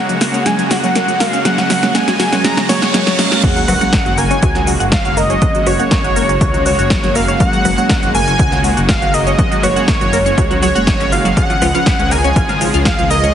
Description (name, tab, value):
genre	progressive house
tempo	121 BPM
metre	4/4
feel	straight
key	F# major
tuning	A4 = 439 Hz
part	wide unison lead	melody	0.0-13.3 s	C#5 to A#5	-17 LUFS	equal	lush chorus, cassette tape, dub echo
part	supersaw pad	sustained chords	0.0-13.3 s	C#3 to G#4	-21 LUFS	equal	sidechain pumping
part	deep mellow chord stab	stabs	0.0-13.3 s	E#3 to C#5	-22 LUFS	right 3 dB	chorus, cassette tape, sidechain pumping
part	riser, reverse cymbal and sub drop	sound effects	0.0-5.4 s	none	-23 LUFS	right 1 dB	none
part	drifting glass-harmonics texture	texture	0.0-3.4 s	A#5	-34 LUFS	right 1 dB	none
part	tight sequenced synth	arpeggios	0.1-13.3 s	C#3 to F#5	-20 LUFS	left 1 dB	chorus, phaser, sidechain pumping, dub echo
part	big-room dance drum kit	drums	0.1-13.3 s	crash cymbal, hi-hat, rim click, shaker, snare drum	-19 LUFS	equal	overdrive, sidechain pumping on hats, sidechain pumping on perc, sidechain pumping on cymbals
part	electronic kick drum	drums	3.4-13.0 s	none	-17 LUFS	equal	overdrive
part	dark detuned saw bass	bass	3.7-13.3 s	F#1 to C#2	-19 LUFS	equal	sidechain pumping
room	moderate lush hall reverb, RT60 1.8 s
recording	heavily compressed radio sound, multiband compression, nothing above 11.0 kHz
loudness	-11 LUFS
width	side -9 dB against mid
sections	0.0-3.4 A section; 3.4-13.3 B section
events	build-up 0.0-3.4; drum fill 0.0-3.4; riser 0.0-3.4; filter sweep on synth arpeggio sound 0.0-3.4; filter sweep on synth stab 0.0-3.4; filter sweep on analog synth lead 0.0-3.4; reverse cymbal 2.5-3.4; drop 3.4-13.3; impact 3.4-5.4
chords	0.0 F#add9; 11.4 C#